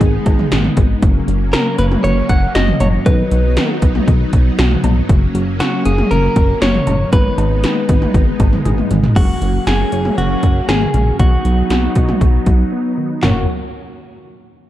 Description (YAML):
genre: synth-pop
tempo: 118 BPM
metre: 4/4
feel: straight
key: F# major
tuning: A4 = 439 Hz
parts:
  - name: direct-recorded clean electric guitar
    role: melody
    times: 0.0-13.5 s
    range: F#4 to F#5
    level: -21 LUFS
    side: equal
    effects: spring reverb, low-pass filter, slapback echo
  - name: string machine, violas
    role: sustained chords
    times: 0.0-13.5 s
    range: F#3 to C#5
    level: -21 LUFS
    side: equal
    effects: ensemble chorus, low-pass filter
  - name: soft round pluck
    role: arpeggios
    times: 0.0-13.5 s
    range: C#3 to D#5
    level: -24 LUFS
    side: left 2 dB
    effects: chorus, low-pass filter, slapback echo
  - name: chorused synth bass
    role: bass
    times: 0.0-13.5 s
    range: F#1 to B1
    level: -16 LUFS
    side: equal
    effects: none
  - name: 80s electronic pad drums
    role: drums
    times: 0.0-13.3 s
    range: cowbell, crash cymbal, handclaps, hi-hat, kick drum, snare drum, toms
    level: -15 LUFS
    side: equal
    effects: gated reverb on snare and toms, overdrive
room: light reverb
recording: dark, warm production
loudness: -12 LUFS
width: side -13 dB against mid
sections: 0.0-9.2 A section; 9.2-13.2 B section; 13.2-14.7 C section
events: drum fill 8.7-9.2; filter sweep 9.2-13.2; break 12.7-13.2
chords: 0.0 G#m; 1.0 F#; 3.1 B; 5.1 F#; 7.1 G#m; 9.2 F#; 11.2 B; 13.2 F#